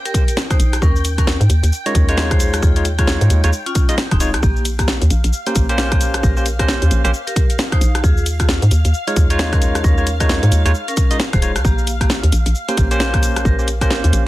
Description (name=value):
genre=UK garage, two-step garage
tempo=133 BPM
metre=4/4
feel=swing 60% on 16ths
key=Bb dorian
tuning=A4 = 439 Hz
part: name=soft string machine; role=sustained chords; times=0.0-14.3 s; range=F5 to G5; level=-31 LUFS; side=equal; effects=phaser, ensemble chorus, vintage 12-bit sampler grit, sidechain pumping
part: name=vibraphone with medium hard mallets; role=melody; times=0.1-14.0 s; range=Bb3 to C5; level=-26 LUFS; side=equal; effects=digital delay
part: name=electronic kick drum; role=drums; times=0.1-13.9 s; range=none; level=-16 LUFS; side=equal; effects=none
part: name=house drum kit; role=drums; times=0.1-14.2 s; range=hi-hat, rim click, shaker, snare drum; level=-22 LUFS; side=left 1 dB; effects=soft clipping on snare
part: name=hollow knocking FM bass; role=bass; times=0.6-14.2 s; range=Eb1 to Ab2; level=-16 LUFS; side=equal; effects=none
part: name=barky tine electric piano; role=stabs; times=1.9-14.2 s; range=Ab3 to Eb5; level=-22 LUFS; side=moving between left 3 dB and right 4 dB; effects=auto-pan, digital delay
room=light reverb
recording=dense, heavily limited modern master, vinyl crackle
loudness=-14 LUFS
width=side -17 dB against mid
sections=0.0-14.3 A section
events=none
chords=0.0 Bbsus2; 0.8 Eb9sus4; 4.4 Bbm69; 8.0 Eb9sus4; 11.6 Bbm69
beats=0.37 | 0.82 1.27 1.72 2.17 | 2.62 3.08 3.53 3.98 | 4.43 4.88 5.33 5.78 | 6.23 6.68 7.14 7.59 | 8.04 8.49 8.94 9.39 | 9.84 10.29 10.74 11.20 | 11.65 12.10 12.55 13.00 | 13.45 13.90